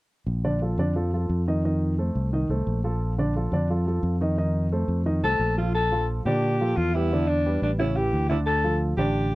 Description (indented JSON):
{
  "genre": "Afro-Cuban jazz",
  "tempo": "176 BPM",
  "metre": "4/4",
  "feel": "straight",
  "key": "Bb major",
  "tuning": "A4 = 440 Hz",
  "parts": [
    { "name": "fingered electric bass", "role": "bass", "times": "0.3-9.3 s", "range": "A1 to Bb2", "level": "-25 LUFS", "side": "equal", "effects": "none" },
    { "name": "warm baby grand piano", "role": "accompaniment", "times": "0.4-9.3 s", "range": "C#3 to Eb5", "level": "-27 LUFS", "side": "right 1 dB", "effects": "none" },
    { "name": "growling alto saxophone", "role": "melody", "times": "5.2-9.3 s", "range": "D4 to A4", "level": "-25 LUFS", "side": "left 1 dB", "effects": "none" }
  ],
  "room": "little or no reverb",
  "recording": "dry, close 1970s-style studio recording",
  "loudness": "-22 LUFS",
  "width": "side -19 dB against mid",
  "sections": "0.3-5.7 A section; 5.7-9.3 B section",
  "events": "none",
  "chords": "0.3 Bbmaj7; 1.6 F7; 3.0 Bbmaj7; 4.4 F7; 5.7 Bbmaj7; 7.1 Em7; 7.8 A7; 8.5 Dm"
}